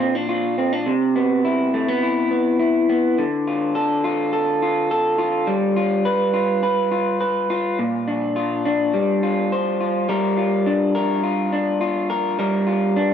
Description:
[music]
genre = indie pop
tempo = 104 BPM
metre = 4/4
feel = straight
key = unclear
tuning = A4 = 441 Hz
[part]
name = electric guitar through a small old amp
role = solo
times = 0.0-13.1 s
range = Bb2 to C5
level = -18 LUFS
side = equal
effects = wide subtle chorus, vibrato effect, analog delay
[sound]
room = moderate small room reverb, RT60 0.6 s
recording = dark, warm production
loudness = -18 LUFS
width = side -8 dB against mid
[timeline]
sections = 0.0-10.1 A section; 10.1-13.1 B section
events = none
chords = 0.0 Bb; 0.9 Cmaj7; 3.2 Dm; 5.5 G7; 7.8 Bb; 8.9 G7sus4; 10.1 Gm7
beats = 0.29 | 0.87 1.44 2.02 2.60 | 3.17 3.75 4.33 4.90 | 5.48 6.06 6.63 7.21 | 7.79 8.36 8.94 9.52 | 10.09 10.67 11.25 11.82 | 12.40 12.97

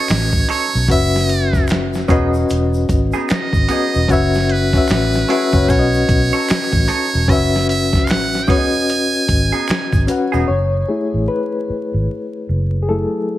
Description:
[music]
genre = R&B, neo-soul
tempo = 75 BPM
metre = 4/4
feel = swing 62% on 16ths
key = F# dorian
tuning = A4 = 438 Hz
[part]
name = trumpet with metal mute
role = melody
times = 0.0-10.1 s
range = B4 to G#5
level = -21 LUFS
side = right 3 dB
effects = none
[part]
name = semi-hollow electric guitar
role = second line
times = 0.0-10.5 s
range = A3 to C#5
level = -25 LUFS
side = right 6 dB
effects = spring reverb
[part]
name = reed electric piano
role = accompaniment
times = 0.0-13.4 s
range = F#3 to F#5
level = -18 LUFS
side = left 3 dB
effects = fast tremolo
[part]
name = vintage muted fingered electric bass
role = bass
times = 0.1-13.0 s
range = E1 to B1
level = -19 LUFS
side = equal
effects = none
[part]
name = dusty soul sampler-style drum kit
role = drums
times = 0.1-10.3 s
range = finger snaps, hi-hat, kick drum, snare drum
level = -18 LUFS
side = equal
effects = none
[part]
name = finger snaps and tube shaker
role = percussion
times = 0.1-10.5 s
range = none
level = -34 LUFS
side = right 1 dB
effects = none
[sound]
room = digital ambience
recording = vinyl crackle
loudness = -14 LUFS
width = side -14 dB against mid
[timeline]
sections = 0.0-10.5 A section; 10.5-13.4 B section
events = reed electric piano solo 10.5-13.4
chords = 0.0 B9; 0.9 F#5; 2.1 Emaj7; 4.1 F#m7; 5.7 B9; 7.3 F#m7; 8.5 Emaj7; 10.5 F#m9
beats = 0.08 | 0.88 1.68 2.48 3.28 | 4.08 4.88 5.68 6.48 | 7.28 8.08 8.88 9.68 | 10.48 11.28 12.08 12.88

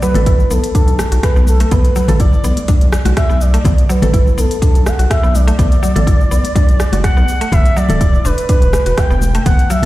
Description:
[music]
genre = afro house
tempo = 124 BPM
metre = 4/4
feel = swing 54% on 16ths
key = B minor pentatonic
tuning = A4 = 443 Hz
[part]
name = expressive synth lead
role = melody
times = 0.0-9.9 s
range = A4 to G5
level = -20 LUFS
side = right 1 dB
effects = chorus, digital delay
[part]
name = mallet-like synth pluck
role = arpeggios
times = 0.0-9.9 s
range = F#3 to A4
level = -22 LUFS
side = equal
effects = chorus, sidechain pumping, digital delay
[part]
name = afro-pop drum kit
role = drums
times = 0.0-9.9 s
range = hi-hat, rim click, shaker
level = -25 LUFS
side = equal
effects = none
[part]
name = congas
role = percussion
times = 0.1-9.9 s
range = none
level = -21 LUFS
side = left 2 dB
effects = none
[part]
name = round analog bass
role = bass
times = 0.2-9.9 s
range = D1 to B1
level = -14 LUFS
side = equal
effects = sidechain pumping
[part]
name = electronic kick drum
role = drums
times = 0.3-9.6 s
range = none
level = -13 LUFS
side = equal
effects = none
[sound]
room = light reverb, digital ambience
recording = played on a big sound system in a bare room, large studio reverb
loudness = -10 LUFS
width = side -16 dB against mid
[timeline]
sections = 0.0-9.9 A section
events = none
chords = 0.0 Bm7; 7.5 Em7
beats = 0.27 0.75 1.23 | 1.72 2.20 2.68 3.17 | 3.65 4.14 4.62 5.10 | 5.59 6.07 6.55 7.04 | 7.52 8.01 8.49 8.97 | 9.46

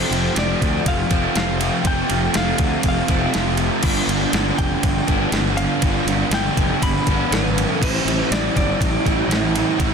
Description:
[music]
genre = rock, shoegaze and dream pop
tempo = 121 BPM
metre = 4/4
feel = straight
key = unclear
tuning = A4 = 441 Hz
[part]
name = direct-recorded clean electric guitar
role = melody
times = 0.0-9.9 s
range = B4 to B5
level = -27 LUFS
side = left 3 dB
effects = lush chorus, analog delay
[part]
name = crunchy overdriven guitar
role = riff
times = 0.0-9.9 s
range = F2 to E4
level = -20 LUFS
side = right 1 dB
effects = lush chorus
[part]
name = fuzz fingered electric bass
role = bass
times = 0.0-9.9 s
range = F1 to D2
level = -23 LUFS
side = equal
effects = overdrive
[part]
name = crisp 8-bit digital drum machine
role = drums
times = 0.1-9.9 s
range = crash cymbal, kick drum, ride cymbal, snare drum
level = -22 LUFS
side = equal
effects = overdrive
[sound]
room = light reverb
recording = dense, heavily limited modern master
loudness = -17 LUFS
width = side -6 dB against mid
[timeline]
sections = 0.0-9.9 A section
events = none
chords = 0.0 F; 3.8 G7; 7.8 A7sus4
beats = 0.35 0.84 1.34 | 1.84 2.34 2.83 3.33 | 3.83 4.33 4.82 5.32 | 5.82 6.31 6.81 7.30 | 7.80 8.30 8.79 9.29 | 9.78

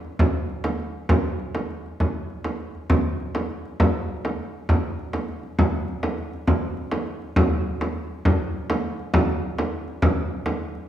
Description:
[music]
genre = medieval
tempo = 134 BPM (dotted quarters)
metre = 6/8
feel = straight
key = none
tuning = none
[part]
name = frame drum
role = percussion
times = 0.0-10.8 s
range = none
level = -22 LUFS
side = equal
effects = none
[sound]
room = wet recital hall reverb, RT60 1.4 s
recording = none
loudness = -22 LUFS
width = side -11 dB against mid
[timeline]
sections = 0.0-1.1 A section; 1.1-8.3 B section; 8.3-10.9 C section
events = speeding up 0.0-10.9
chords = none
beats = | 0.20 0.65 | 1.10 1.55 | 2.00 2.45 | 2.90 3.35 | 3.80 4.25 | 4.70 5.14 | 5.59 6.04 | 6.48 6.93 | 7.37 7.82 | 8.26 8.70 | 9.14 9.58 | 10.03 10.46

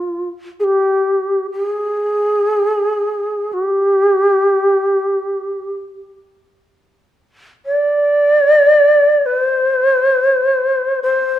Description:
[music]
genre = japanese traditional, Japanese chamber music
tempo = free time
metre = none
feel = none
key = G in sen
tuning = A4 = 441 Hz
[part]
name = long shakuhachi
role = solo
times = 0.0-11.4 s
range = F4 to D5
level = -13 LUFS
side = equal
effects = none
[sound]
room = moderate recital hall reverb, RT60 1.7 s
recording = minimal, uncompressed stereo recording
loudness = -13 LUFS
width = side -12 dB against mid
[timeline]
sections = 0.0-11.4 A section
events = none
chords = none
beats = free time

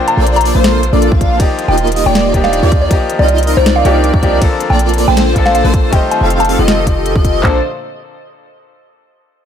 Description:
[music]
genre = future bass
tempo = 159 BPM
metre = 4/4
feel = half-time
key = Bb major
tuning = A4 = 440 Hz
[part]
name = mallet-like synth pluck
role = melody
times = 0.0-6.8 s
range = C5 to Bb5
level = -17 LUFS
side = left 1 dB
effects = chorus, phaser, sidechain pumping, dub echo
[part]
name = bright grand piano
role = accompaniment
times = 0.0-7.6 s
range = F3 to C5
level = -20 LUFS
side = left 4 dB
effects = sidechain pumping, dub echo
[part]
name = warm studio string section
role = sustained chords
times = 0.0-7.6 s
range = Bb2 to C5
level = -26 LUFS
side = equal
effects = sidechain pumping
[part]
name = trap drum kit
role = drums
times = 0.1-7.3 s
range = hi-hat, ride cymbal, snare drum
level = -20 LUFS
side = equal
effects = none
[part]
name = airy dreamy lead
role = arpeggios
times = 0.2-7.6 s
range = C5 to F5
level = -20 LUFS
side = equal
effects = chorus, cassette tape, sidechain pumping, dub echo
[part]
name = big bright polysynth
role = riff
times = 0.2-7.6 s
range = Bb3 to F5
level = -17 LUFS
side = right 1 dB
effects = lush chorus, sidechain pumping
[part]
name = warm 808-style bass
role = bass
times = 0.2-7.6 s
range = Eb1 to Eb2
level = -14 LUFS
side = equal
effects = sidechain pumping
[part]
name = trap drum kit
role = drums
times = 1.1-7.5 s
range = handclaps, kick drum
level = -13 LUFS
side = equal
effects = none
[sound]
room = light reverb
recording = none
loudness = -9 LUFS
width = side -8 dB against mid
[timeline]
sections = 0.0-7.4 A section; 7.4-8.9 B section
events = drop 0.0-7.4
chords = 0.0 Bbmaj9; 1.4 Ebmaj9; 2.9 Cm11; 4.4 Bbmaj9; 5.9 F9; 7.4 Bbmaj9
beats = 0.27 0.64 1.02 | 1.40 1.77 2.15 2.53 | 2.91 3.28 3.66 4.04 | 4.42 4.79 5.17 5.55 | 5.92 6.30 6.68 7.06 | 7.43

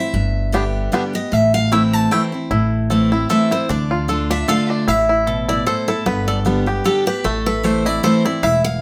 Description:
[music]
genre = bluegrass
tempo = 152 BPM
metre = 3/4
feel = swing 55% on 8ths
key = A minor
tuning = A4 = 440 Hz
[part]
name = picked steel-string acoustic guitar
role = melody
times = 0.0-8.8 s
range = G4 to A5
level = -23 LUFS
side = equal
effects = none
[part]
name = picked steel-string acoustic guitar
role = accompaniment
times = 0.0-8.8 s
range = E2 to G4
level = -22 LUFS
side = equal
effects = none
[part]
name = upright bass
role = bass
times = 0.1-8.8 s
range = E1 to D2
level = -25 LUFS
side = equal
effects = none
[part]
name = bluegrass banjo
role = arpeggios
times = 0.5-8.8 s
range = A3 to A4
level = -24 LUFS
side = equal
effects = none
[sound]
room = moderate studio reverb, RT60 0.7 s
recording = none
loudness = -18 LUFS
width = mono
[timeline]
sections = 0.0-2.5 A section; 2.5-8.8 A section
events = none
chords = 0.1 G; 1.3 Am; 3.7 Dm; 4.9 A5; 6.1 G; 7.2 Am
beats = | 0.14 0.53 0.93 | 1.32 1.72 2.11 | 2.51 2.90 3.30 | 3.69 4.09 4.49 | 4.88 5.28 5.67 | 6.07 6.46 6.86 | 7.25 7.64 8.04 | 8.43

